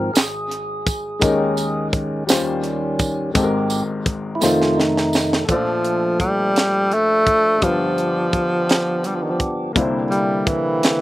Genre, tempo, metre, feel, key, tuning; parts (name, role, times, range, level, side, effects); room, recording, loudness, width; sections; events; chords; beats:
slow gospel; 56 BPM (dotted quarters); 6/8; straight; Ab major, Bb major from 5.5 s; A4 = 440 Hz
warm baby grand piano; accompaniment; 0.0-11.0 s; F1 to D5; -24 LUFS; left 3 dB
tonewheel organ; sustained chords; 0.0-11.0 s; F2 to Bb4; -22 LUFS; right 1 dB; fast rotary speaker, overdrive
tight funk drum kit; drums; 0.2-11.0 s; hi-hat, kick drum, snare drum; -19 LUFS; equal
tambourine; percussion; 0.2-5.5 s; -28 LUFS; right 6 dB
breathy tenor saxophone; melody; 5.5-11.0 s; Eb3 to A3; -18 LUFS; equal
little or no reverb; recorded outdoors, with no room sound; -17 LUFS; side -16 dB against mid
0.0-5.5 A section; 5.5-11.0 B section
tonewheel organ solo 0.0-5.5; drum fill 4.4-5.5
0.0 Ab6; 1.2 Eb7sus4; 2.3 Eb13; 3.4 Abmaj9; 4.4 F7; 5.5 Bbmaj7; 7.6 G7; 9.8 C9
0.16 | 1.22 2.29 | 3.36 4.42 | 5.49 6.56 | 7.62 8.69 | 9.76 10.83